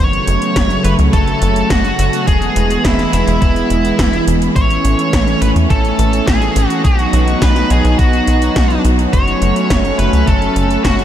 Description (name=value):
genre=synthwave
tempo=105 BPM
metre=4/4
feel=straight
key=unclear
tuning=A4 = 440 Hz
part: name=high-gain lead guitar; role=melody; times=0.0-11.0 s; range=E4 to C#5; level=-18 LUFS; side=equal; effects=distortion, tape echo
part: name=warm analog pad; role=sustained chords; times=0.0-11.0 s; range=C#3 to D#4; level=-17 LUFS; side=right 1 dB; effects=chorus, sidechain pumping
part: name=tight sequencer bass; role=bass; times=0.0-11.0 s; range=E1 to E2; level=-16 LUFS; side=equal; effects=none
part: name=80s electronic pad drums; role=drums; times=0.1-11.0 s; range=hi-hat, snare drum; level=-21 LUFS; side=equal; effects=none
part: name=electronic kick drum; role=drums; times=0.6-11.0 s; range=none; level=-16 LUFS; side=equal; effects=overdrive
room=moderate huge ambient reverb, RT60 7.2 s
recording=dreamy mix soaked in reverb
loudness=-11 LUFS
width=side -10 dB against mid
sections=0.0-11.0 A section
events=none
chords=0.0 F#m; 2.3 E; 4.6 A; 6.8 B; 9.1 F#m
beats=0.56 1.13 1.70 | 2.27 2.85 3.42 3.99 | 4.56 5.13 5.70 6.28 | 6.85 7.42 7.99 8.56 | 9.13 9.70 10.28 10.85